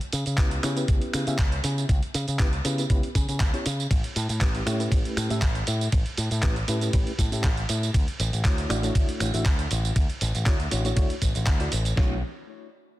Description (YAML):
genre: nu-disco, nu disco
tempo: 119 BPM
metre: 4/4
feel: swing 53% on 16ths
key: unclear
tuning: A4 = 441 Hz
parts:
  - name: dusty soul sampler-style drum kit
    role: drums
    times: 0.0-12.0 s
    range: finger snaps, handclaps, hi-hat, ride cymbal, tambourine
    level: -30 LUFS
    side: right 2 dB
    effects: none
  - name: picked electric bass with an envelope filter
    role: bass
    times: 0.1-12.2 s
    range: A1 to C#3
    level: -27 LUFS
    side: equal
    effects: tube saturation
  - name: mellow reed electric piano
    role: accompaniment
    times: 0.4-12.2 s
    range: A3 to E5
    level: -32 LUFS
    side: equal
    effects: fast tremolo, sidechain pumping, ping-pong delay
  - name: dusty soul sampler-style drum kit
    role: drums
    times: 0.4-12.1 s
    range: kick drum, snare drum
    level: -23 LUFS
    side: equal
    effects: none
room: little or no reverb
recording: dense, heavily limited modern master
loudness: -22 LUFS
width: side -16 dB against mid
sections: 0.0-12.0 A section; 12.0-13.0 B section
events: drop 0.0-12.0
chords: 0.0 C#m7b5; 3.9 A7; 7.9 Dmaj7; 12.0 Bm11